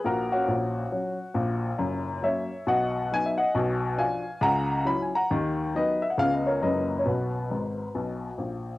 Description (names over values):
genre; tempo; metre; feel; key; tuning
jazz, stride piano; 137 BPM; 4/4; swing 61% on 8ths; B major; A4 = 441 Hz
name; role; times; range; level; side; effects
warm baby grand piano; solo; 0.0-8.7 s; F#1 to B5; -24 LUFS; left 1 dB; none
room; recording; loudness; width
moderate spring reverb, RT60 1.5 s; home recording on cassette; -24 LUFS; side -17 dB against mid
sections
0.0-8.8 A section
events
grand piano fill 7.5-8.8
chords
0.0 F#/A#; 1.8 F#7; 2.7 B; 3.6 Bdim7; 4.4 F#7/C#; 5.3 B/D#; 6.2 C#7; 6.6 F#9; 7.1 B5